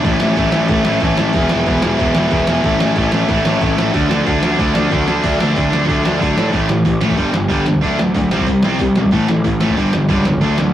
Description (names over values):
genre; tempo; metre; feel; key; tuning
punk rock; 185 BPM; 4/4; straight; unclear; A4 = 439 Hz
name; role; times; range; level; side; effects
overdriven electric guitar; riff; 0.0-10.7 s; G2 to F#4; -17 LUFS; left 2 dB; none
tight distorted guitar; riff; 0.0-10.7 s; E2 to D4; -20 LUFS; right 3 dB; distortion
trip hop sampler-style drum kit; drums; 0.0-10.7 s; crash cymbal, hi-hat, kick drum, snare drum; -20 LUFS; equal; overdrive
fuzz picked electric bass; bass; 0.1-10.7 s; E1 to A2; -20 LUFS; right 1 dB; overdrive
room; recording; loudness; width
light reverb; rough rehearsal-room recording, warm saturation; -13 LUFS; side -11 dB against mid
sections
0.0-5.2 A section; 5.2-6.5 B section; 6.5-10.7 C section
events
drum fill 4.9-5.2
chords
0.1 A; 1.3 E; 2.6 A; 3.9 D; 6.5 A5; 7.2 G5; 7.8 D; 8.3 C5; 9.1 A5; 9.8 G5